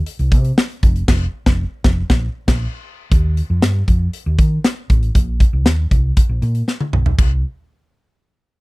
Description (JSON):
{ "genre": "1980s-style pop", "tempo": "118 BPM", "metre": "4/4", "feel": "straight", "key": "unclear", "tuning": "A4 = 439 Hz", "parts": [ { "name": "modern studio drum kit", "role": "drums", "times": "0.1-7.3 s", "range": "crash cymbal, hi-hat, kick drum, snare drum, tambourine, toms", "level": "-15 LUFS", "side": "equal", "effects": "none" }, { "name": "hollow-body short-scale fingered electric bass", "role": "bass", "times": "0.2-7.4 s", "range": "F1 to Eb3", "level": "-17 LUFS", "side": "equal", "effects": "none" } ], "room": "little or no reverb", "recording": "dry, close 1970s-style studio recording", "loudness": "-14 LUFS", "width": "side -22 dB against mid", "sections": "0.0-3.1 A section; 3.1-7.2 B section; 7.2-8.6 C section", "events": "band accent 1.1-3.1; drum fill 6.7-7.2", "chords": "none" }